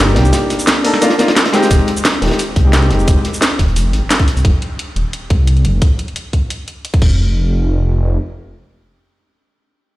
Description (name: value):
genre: liquid drum and bass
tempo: 175 BPM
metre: 4/4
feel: straight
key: F dorian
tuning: A4 = 440 Hz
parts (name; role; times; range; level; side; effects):
- warm concert grand piano; accompaniment; 0.0-3.3 s; Ab3 to A4; -17 LUFS; left 1 dB; digital delay
- swelling detuned saw bass; bass; 0.0-8.2 s; Eb1 to C2; -13 LUFS; equal; none
- crunchy breakbeat drum kit; drums; 0.1-4.4 s; hi-hat, snare drum; -20 LUFS; equal; high-pass filter on hats, high-pass filter on snare, high-pass filter on room
- drum and bass drum kit; drums; 0.2-7.1 s; crash cymbal, hi-hat, shaker, snare drum; -18 LUFS; equal; none
- electronic kick drum; drums; 1.7-7.1 s; none; -12 LUFS; equal; none
room: studio reverb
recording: played on a big sound system in a bare room, large studio reverb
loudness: -12 LUFS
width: side -17 dB against mid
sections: 0.0-1.7 A section; 1.7-7.2 B section; 7.2-9.9 C section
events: drop 0.0-1.7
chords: 0.0 Cm9; 1.7 Fm9; 7.0 N.C.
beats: | 0.33 0.68 1.02 1.36 | 1.70 2.05 2.39 2.73 | 3.08 3.42 3.76 4.10 | 4.45 4.79 5.13 5.48 | 5.82 6.16 6.50 6.85 | 7.19 7.53 7.88